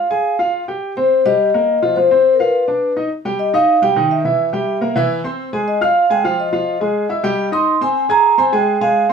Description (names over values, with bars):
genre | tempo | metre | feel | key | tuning
jazz | 210 BPM | 4/4 | straight | unclear | A4 = 441 Hz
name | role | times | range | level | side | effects
vibraphone with soft mallets | melody | 0.0-9.1 s | Bb4 to C6 | -15 LUFS | equal | none
clear baby grand piano | accompaniment | 0.0-9.1 s | Eb3 to Ab6 | -19 LUFS | equal | none
room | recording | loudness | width
wet studio ambience, RT60 0.5 s | band playing live in one room | -14 LUFS | side -6 dB against mid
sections
0.0-3.1 A section; 3.1-9.1 B section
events
none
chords
0.0 Fmadd9/Ab; 0.8 Eb6; 2.0 F5; 2.5 Dm6; 3.1 Ebadd9; 4.2 C7; 5.4 Fmadd9; 6.5 Fm7; 7.1 Emmaj7/G; 7.7 Ab